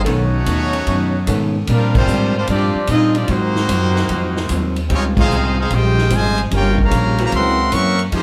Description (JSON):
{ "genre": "jazz, big band swing", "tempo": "149 BPM", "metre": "4/4", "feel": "swing 67% on 8ths", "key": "unclear", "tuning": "A4 = 440 Hz", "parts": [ { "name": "clear saxophone section", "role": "sustained chords", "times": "0.0-8.2 s", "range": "D#3 to Bb4", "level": "-28 LUFS", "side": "equal", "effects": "none" }, { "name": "upright bass", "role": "bass", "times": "0.0-8.2 s", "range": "G1 to Bb2", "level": "-21 LUFS", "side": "equal", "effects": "none" }, { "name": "brilliant trumpet section", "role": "melody", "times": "0.1-8.2 s", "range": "G3 to Db6", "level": "-23 LUFS", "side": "equal", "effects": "plate reverb" }, { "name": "warm trombone section", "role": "second line", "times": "0.1-8.2 s", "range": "C3 to G4", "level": "-25 LUFS", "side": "equal", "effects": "none" }, { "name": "vintage hollow-body jazz guitar", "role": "accompaniment", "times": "0.1-8.2 s", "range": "Ab2 to Bb4", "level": "-25 LUFS", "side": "equal", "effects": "none" }, { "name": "swinging big-band drum kit", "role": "drums", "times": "0.1-8.2 s", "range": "crash cymbal, hi-hat, kick drum, ride cymbal, snare drum", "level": "-26 LUFS", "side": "equal", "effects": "none" } ], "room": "wet club reverb, RT60 0.6 s", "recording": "heard from further back in the room", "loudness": "-17 LUFS", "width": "mono", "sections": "0.0-8.2 A section", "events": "band accent 1.9, 5.1", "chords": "0.1 B9; 1.7 Bb69; 3.3 Ab13; 4.9 Dbmaj9#11; 6.5 Gm7b5; 7.3 Gb7#11" }